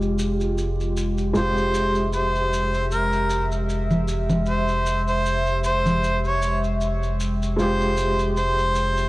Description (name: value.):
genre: trip hop.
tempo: 77 BPM.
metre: 4/4.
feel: swing 56% on 16ths.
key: F harmonic minor.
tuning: A4 = 439 Hz.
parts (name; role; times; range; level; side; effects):
felt-muted upright piano; accompaniment; 0.0-9.1 s; Ab3 to G4; -26 LUFS; equal; tremolo.
warbly tape-like pad; sustained chords; 0.0-9.1 s; Ab3 to E5; -28 LUFS; left 1 dB; chorus, built-in reverb, phaser.
soft dub sub bass; bass; 0.0-9.1 s; F1; -25 LUFS; equal; tube saturation.
maracas and congas; percussion; 0.0-9.1 s; none; -29 LUFS; equal; none.
bright harmonica; melody; 1.4-9.1 s; Bb4 to Db5; -24 LUFS; equal; tape echo.
room: light reverb, studio reverb.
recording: worn, warbling old tape, cassette tape, vinyl crackle, warbly pitch drift.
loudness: -20 LUFS.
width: side -19 dB against mid.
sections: 0.0-9.1 A section.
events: none.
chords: 0.0 Fmadd9.